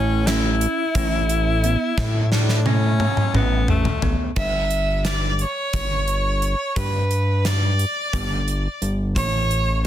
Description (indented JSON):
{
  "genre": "progressive instrumental, band music in an uneven meter",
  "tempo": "175 BPM (eighths)",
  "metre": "7/8",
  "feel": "straight",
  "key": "G lydian",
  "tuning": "A4 = 439 Hz",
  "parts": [
    { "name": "bright alto saxophone", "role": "second line", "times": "0.0-4.3 s", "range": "A3 to E4", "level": "-24 LUFS", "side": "left 3 dB", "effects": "plate reverb" },
    { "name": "bell-like tine electric piano", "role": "arpeggios", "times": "0.0-4.3 s", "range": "B3 to E4", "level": "-28 LUFS", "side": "right 7 dB", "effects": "phaser, plate reverb" },
    { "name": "fat analog bass", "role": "bass", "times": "0.0-9.9 s", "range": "G1 to A2", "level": "-21 LUFS", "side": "equal", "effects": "none" },
    { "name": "gated 80s drum kit", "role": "drums", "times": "0.3-9.7 s", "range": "crash cymbal, hi-hat, kick drum, snare drum, toms", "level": "-24 LUFS", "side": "equal", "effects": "none" },
    { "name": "clear violin", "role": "melody", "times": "4.4-9.9 s", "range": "B4 to E5", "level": "-24 LUFS", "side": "right 2 dB", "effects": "plate reverb" }
  ],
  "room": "light reverb",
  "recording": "dense, heavily limited modern master",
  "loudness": "-18 LUFS",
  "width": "side -11 dB against mid",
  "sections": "0.0-4.4 A section; 4.4-9.9 B section",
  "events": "drum fill 2.0-4.4",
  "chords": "0.0 A; 4.4 G5; 9.2 A"
}